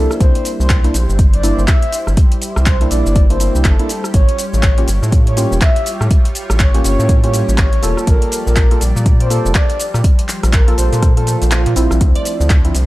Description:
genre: deep house.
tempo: 122 BPM.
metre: 4/4.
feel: swing 60% on 16ths.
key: unclear.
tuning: A4 = 439 Hz.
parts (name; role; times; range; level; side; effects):
breathy flute-like synth lead; melody; 0.0-11.9 s; F4 to E5; -23 LUFS; equal; wide subtle chorus, analog delay.
warm analog pad; sustained chords; 0.0-12.9 s; F3 to D5; -27 LUFS; equal; chorus, sidechain pumping.
percussive organ stab; stabs; 0.0-12.8 s; F3 to A4; -22 LUFS; equal; analog chorus, sidechain pumping, analog delay.
rubbery square bass; bass; 0.0-12.9 s; E1 to Bb2; -15 LUFS; equal; sidechain pumping.
deep house drum kit; drums; 0.1-12.9 s; handclaps, hi-hat, rim click, shaker; -22 LUFS; equal; none.
electronic kick drum; drums; 0.2-12.6 s; none; -12 LUFS; equal; none.
glassy wavetable pluck; melody; 12.2-12.3 s; D5; -24 LUFS; right 7 dB; chorus, analog delay.
room: little or no reverb.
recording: none.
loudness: -11 LUFS.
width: side -18 dB against mid.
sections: 0.0-12.9 A section.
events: kick drops out 11.5-12.0.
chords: 0.0 C7; 4.1 A7b9b13; 8.1 Gm7; 12.0 Dm7.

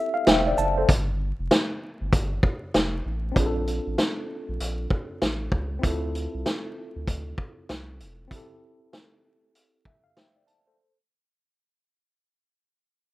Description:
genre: hip hop, boom-bap hip-hop.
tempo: 97 BPM.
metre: 4/4.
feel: swing 63% on 16ths.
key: unclear.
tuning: A4 = 440 Hz.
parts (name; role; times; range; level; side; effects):
tine electric piano; accompaniment; 0.0-11.0 s; C4 to A5; -28 LUFS; equal; overdrive, fast stereo tremolo, cassette tape, high-pass filter, low-pass filter.
warm sub bass; bass; 0.3-8.3 s; E1 to D2; -30 LUFS; equal; none.
vintage drum kit; drums; 0.3-10.7 s; hi-hat, kick drum, shaker, snare drum; -23 LUFS; equal; none.
room: little or no reverb.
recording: rough home demo mix, vinyl crackle.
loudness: -23 LUFS.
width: side -18 dB against mid.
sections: 0.9-10.8 A section.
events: break 0.0-0.9, 0.9-3.4, 8.3-10.8; fade-out 0.9-10.8.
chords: 0.0 Fmaj7; 0.9 Fadd9; 3.4 Bbmaj7; 5.8 Dm7; 8.3 C69.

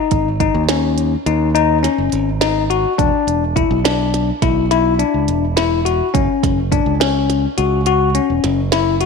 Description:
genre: progressive instrumental, band music in an uneven meter.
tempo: 209 BPM (eighths).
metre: 11/8.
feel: straight.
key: unclear.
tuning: A4 = 440 Hz.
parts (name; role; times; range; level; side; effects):
bell-like tine electric piano; arpeggios; 0.0-9.1 s; C#4 to F#4; -16 LUFS; left 9 dB; none.
modern bright fingered electric bass; bass; 0.1-9.1 s; E1 to D#2; -19 LUFS; right 3 dB; none.
glitchy drum kit; drums; 0.1-9.1 s; hi-hat, kick drum, snare drum; -21 LUFS; right 7 dB; none.
room: moderate echo chamber reverb, RT60 2.0 s, digital ambience.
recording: 1960s-style stereo with parts hard left and right.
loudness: -14 LUFS.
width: side -5 dB against mid.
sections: 0.0-9.1 A section.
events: none.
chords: 0.0 G#5; 3.0 E5; 6.1 F#5.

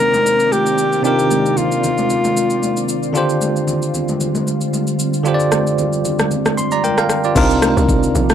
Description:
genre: amapiano.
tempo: 114 BPM.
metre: 4/4.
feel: swing 55% on 16ths.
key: C minor.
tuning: A4 = 440 Hz.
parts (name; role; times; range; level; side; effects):
breathy alto saxophone; melody; 0.0-2.9 s; F4 to Bb4; -17 LUFS; left 1 dB; tape echo.
bell-like tine electric piano; accompaniment; 0.0-8.3 s; C3 to C6; -18 LUFS; right 1 dB; medium stereo tremolo.
glassy FM pad; sustained chords; 0.0-8.3 s; D3 to D5; -23 LUFS; equal; ensemble chorus, built-in reverb.
smooth R&B drum kit; drums; 0.1-8.3 s; crash cymbal, kick drum, rim click, shaker; -22 LUFS; equal; none.
congas; percussion; 0.1-8.3 s; none; -24 LUFS; left 1 dB; none.
hollow log drum bass; bass; 7.4-8.3 s; Bb1 to C2; -18 LUFS; equal; none.
room: little or no reverb.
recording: dry, gritty hardware recording.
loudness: -14 LUFS.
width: side -9 dB against mid.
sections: 0.0-7.4 A section.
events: kick muted 5.3-7.4.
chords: 0.0 Cm11; 3.2 G7sus4/D; 7.4 Cm11.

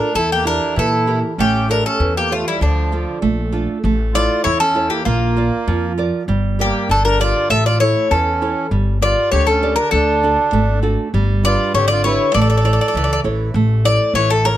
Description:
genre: greek folk, Greek bouzouki band.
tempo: 99 BPM.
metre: 2/4.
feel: straight.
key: unclear.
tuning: A4 = 439 Hz.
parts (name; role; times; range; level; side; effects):
Greek bouzouki; melody; 0.0-14.6 s; D4 to E5; -17 LUFS; left 2 dB; none.
accordion; second line; 0.0-13.2 s; F3 to A4; -23 LUFS; right 4 dB; none.
nylon-string guitar; accompaniment; 0.0-14.6 s; D3 to D5; -22 LUFS; right 4 dB; none.
upright bass; bass; 0.1-14.6 s; G1 to Bb2; -19 LUFS; equal; none.
room: little or no reverb.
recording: close, detailed microphones.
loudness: -14 LUFS.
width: side -12 dB against mid.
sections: 0.0-3.8 A section; 3.8-13.6 B section; 13.6-14.6 B section.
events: none.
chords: 0.2 Edim; 1.4 A7; 2.6 Dm; 3.8 A; 5.1 Bb; 6.3 Gm; 7.5 A; 8.7 Gm; 9.9 D; 11.1 G; 12.3 A.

